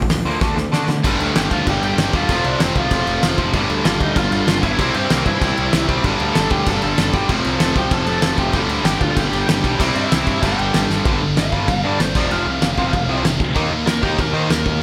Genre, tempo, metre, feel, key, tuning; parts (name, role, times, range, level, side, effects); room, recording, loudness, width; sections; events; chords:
punk rock; 192 BPM; 4/4; straight; G minor; A4 = 440 Hz
distorted electric guitar; riff; 0.0-14.8 s; F2 to Eb4; -28 LUFS; equal; overdrive
overdriven semi-hollow guitar; riff; 0.0-14.8 s; F2 to Eb4; -26 LUFS; equal
fuzz picked electric bass; bass; 0.0-14.8 s; F1 to Eb3; -26 LUFS; equal; overdrive
loose indie drum kit; drums; 0.0-14.7 s; crash cymbal, hi-hat, kick drum, snare drum; -22 LUFS; equal
high-gain distorted guitar; riff; 1.0-14.8 s; F2 to Eb4; -26 LUFS; equal; distortion
lead guitar through a small cranked amp; melody; 1.4-14.8 s; Bb3 to A5; -26 LUFS; equal; overdrive
light reverb; -18 LUFS; mono
0.0-1.0 A section; 1.0-11.0 B section; 11.0-14.8 C section
drum fill 0.4-1.0, 10.9; lead electric guitar solo 11.0-14.8
0.4 D5; 1.0 G5; 2.3 F5; 3.5 G5; 4.8 C; 6.0 G5; 7.3 F; 8.5 G5; 9.8 C; 10.4 G5; 12.1 F5; 13.6 Eb5